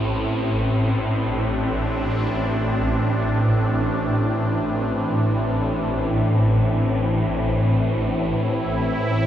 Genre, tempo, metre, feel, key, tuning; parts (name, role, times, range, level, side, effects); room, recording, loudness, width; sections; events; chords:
dark ambient drone; free time; A minor; A4 = 440 Hz
sweeping resonant pad; sustained chords; 0.0-9.3 s; A2 to E4; -23 LUFS; left 1 dB; chorus
swarming drone; drone; 0.0-9.3 s; A1 to A2; -21 LUFS; equal; built-in reverb
bronze singing bowl; texture; 0.0-9.3 s; barely audible
wet lush hall reverb, RT60 2.5 s; dreamy mix soaked in reverb, cassette tape; -19 LUFS; side -10 dB against mid
0.0-9.3 A section
0.0 Am